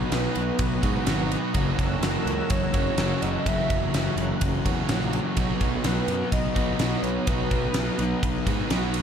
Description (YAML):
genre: rock, shoegaze and dream pop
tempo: 126 BPM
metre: 4/4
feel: straight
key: B major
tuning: A4 = 437 Hz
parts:
  - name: pure sine lead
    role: melody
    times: 0.0-8.2 s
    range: A#4 to E5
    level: -32 LUFS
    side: right 1 dB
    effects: chorus, analog delay
  - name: lush unison pad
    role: sustained chords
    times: 0.0-9.0 s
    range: B4 to F#6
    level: -36 LUFS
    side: equal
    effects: chorus
  - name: raw garage guitar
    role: riff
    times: 0.0-9.0 s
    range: F#2 to F#4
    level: -30 LUFS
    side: right 12 dB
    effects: overdrive, reverse reverb
  - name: thick fuzz guitar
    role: riff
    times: 0.0-9.0 s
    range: F#2 to B3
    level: -30 LUFS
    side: left 10 dB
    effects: distortion, lush chorus
  - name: fuzz picked electric bass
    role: bass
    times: 0.0-9.0 s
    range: F#1 to G#2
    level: -29 LUFS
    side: equal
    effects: overdrive
  - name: gated 80s drum kit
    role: drums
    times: 0.1-9.0 s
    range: kick drum, ride cymbal, snare drum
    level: -27 LUFS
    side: equal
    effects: none
room: light reverb, small room ambience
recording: dark, warm production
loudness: -22 LUFS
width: side -8 dB against mid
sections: 0.0-9.0 A section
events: none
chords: 0.0 Bmaj7; 1.5 F#7; 5.4 Bmaj7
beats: 0.11 0.59 1.07 | 1.54 2.02 2.50 2.98 | 3.45 3.93 4.41 4.88 | 5.36 5.84 6.32 6.79 | 7.27 7.75 8.22 8.70